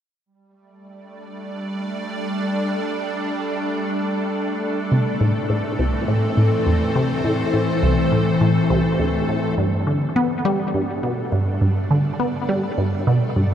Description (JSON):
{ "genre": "ambient, sequencer-driven space music", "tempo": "103 BPM", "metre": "4/4", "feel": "straight", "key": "unclear", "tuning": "A4 = 440 Hz", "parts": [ { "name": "evolving wavetable pad", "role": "sustained chords", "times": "1.1-13.5 s", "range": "E3 to D5", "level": "-22 LUFS", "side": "left 1 dB", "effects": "ensemble chorus, built-in reverb" }, { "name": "resonant blip pluck", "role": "riff", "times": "4.9-13.5 s", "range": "C2 to B3", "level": "-19 LUFS", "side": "equal", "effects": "phaser, analog delay" } ], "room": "wet cathedral reverb, RT60 6.4 s", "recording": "in a vast, echoing space", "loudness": "-18 LUFS", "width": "side -9 dB against mid", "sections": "0.3-9.6 A section; 9.6-13.5 B section", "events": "none", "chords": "0.3 Gsus2; 4.9 Am; 9.6 Gsus2" }